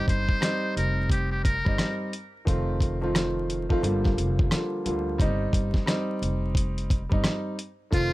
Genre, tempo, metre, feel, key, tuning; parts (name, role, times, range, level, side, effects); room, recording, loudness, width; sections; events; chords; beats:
hip hop, boom-bap hip-hop; 88 BPM; 4/4; swing 62% on 16ths; C dorian; A4 = 439 Hz
trumpet with metal mute; melody; 0.0-2.0, 7.9-8.1 s; F4 to C5; -30 LUFS; equal; high-pass filter, low-pass filter, plate reverb, tape echo
warm grand piano; accompaniment; 0.0-8.1 s; D3 to F4; -29 LUFS; equal; high-pass filter, low-pass filter
upright bass; bass; 0.0-8.1 s; F1 to D2; -29 LUFS; equal
dusty soul sampler-style drum kit; drums; 0.1-8.1 s; hi-hat, kick drum, rim click, snare drum; -24 LUFS; equal; vintage 12-bit sampler grit
light reverb; vinyl crackle; -23 LUFS; side -18 dB against mid
0.0-8.1 A section
0.0 Cm; 2.5 F7; 3.8 Gm7; 5.2 Cm
0.42 1.11 1.79 | 2.47 3.15 3.83 4.52 | 5.20 5.88 6.56 7.24 | 7.92